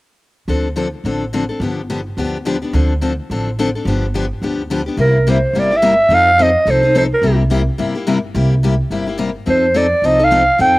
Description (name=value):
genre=acoustic string swing (jazz manouche)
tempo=214 BPM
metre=4/4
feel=swing 57% on 8ths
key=C mixolydian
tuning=A4 = 441 Hz
part: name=picked steel-string acoustic guitar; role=accompaniment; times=0.5-10.8 s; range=C3 to A4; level=-18 LUFS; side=left 3 dB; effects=slapback echo
part: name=upright bass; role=bass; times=0.5-10.8 s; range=G1 to F2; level=-19 LUFS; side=right 1 dB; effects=none
part: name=growling clarinet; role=melody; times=5.0-7.4, 9.5-10.8 s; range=Bb4 to G5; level=-12 LUFS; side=right 1 dB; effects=none
room=little or no reverb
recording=recorded outdoors, with no room sound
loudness=-13 LUFS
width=side -20 dB against mid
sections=0.5-5.0 A section; 5.0-10.8 B section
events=none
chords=0.5 Dm7; 1.6 G7; 2.7 Dm7; 3.9 G7; 5.0 C7; 6.1 F7; 7.2 C7; 9.5 F7